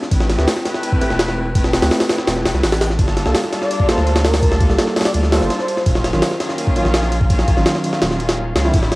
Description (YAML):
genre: drum and bass, jungle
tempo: 167 BPM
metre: 4/4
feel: straight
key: unclear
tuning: A4 = 439 Hz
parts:
  - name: rich symphonic string section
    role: sustained chords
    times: 0.0-9.0 s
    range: D3 to B4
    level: -23 LUFS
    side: equal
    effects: vintage 12-bit sampler grit, cassette tape
  - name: jungle sampler-style drum kit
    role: drums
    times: 0.0-9.0 s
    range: hi-hat, kick drum, ride cymbal, snare drum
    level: -17 LUFS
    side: equal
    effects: none
  - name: saturated sub bass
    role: bass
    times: 0.1-9.0 s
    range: D1 to D2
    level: -19 LUFS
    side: equal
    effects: none
  - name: overdriven tine electric piano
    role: stabs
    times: 0.4-8.8 s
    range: D3 to B4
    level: -23 LUFS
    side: right 1 dB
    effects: fast tremolo, vintage 12-bit sampler grit, cassette tape, dub echo
  - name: breathy flute-like synth lead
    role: melody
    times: 3.6-5.8 s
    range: Bb4 to D5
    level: -25 LUFS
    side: equal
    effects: ensemble chorus, cassette tape, dub echo
room: moderate spring reverb, RT60 1.8 s, digital ambience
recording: home recording on cassette, vinyl crackle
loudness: -14 LUFS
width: side -21 dB against mid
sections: 0.0-9.0 A section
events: kick drops out 2.3-3.0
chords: 0.1 Am9; 3.0 Gm9; 5.9 Ebm9